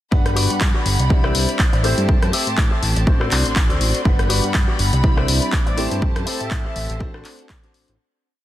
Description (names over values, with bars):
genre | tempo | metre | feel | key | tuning
filtered disco house | 122 BPM | 4/4 | swing 56% on 16ths | unclear | A4 = 440 Hz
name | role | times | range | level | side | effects
clear grand piano | accompaniment | 0.1-7.9 s | G3 to B5 | -26 LUFS | left 1 dB | phaser, sidechain pumping
clear studio violin section | sustained chords | 0.1-8.0 s | G3 to C6 | -29 LUFS | equal | sidechain pumping
fat analog bass | bass | 0.1-8.0 s | G1 to A2 | -21 LUFS | equal | sidechain pumping
electronic kick drum | drums | 0.1-7.6 s | none | -18 LUFS | equal | none
punchy analog drum machine | drums | 0.3-8.0 s | handclaps, hi-hat, rim click | -23 LUFS | left 2 dB | sidechain pumping on hats
electric guitar with an envelope filter | riff | 0.4-7.9 s | D4 to E5 | -29 LUFS | left 2 dB | sidechain pumping
dark trumpet section | melody | 5.7-7.1 s | D5 to E5 | -33 LUFS | left 1 dB | sidechain pumping
room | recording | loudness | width
light reverb, digital ambience | dense, heavily limited modern master | -16 LUFS | side -13 dB against mid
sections
0.1-8.0 drop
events
drop 0.1-8.0; fade-out 5.4-8.0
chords
0.1 Gmaj7; 1.1 Cmaj9; 1.8 Am7; 3.1 D7/A; 4.1 Gmaj7; 5.0 Cmaj9; 5.8 Am7; 7.0 D7/A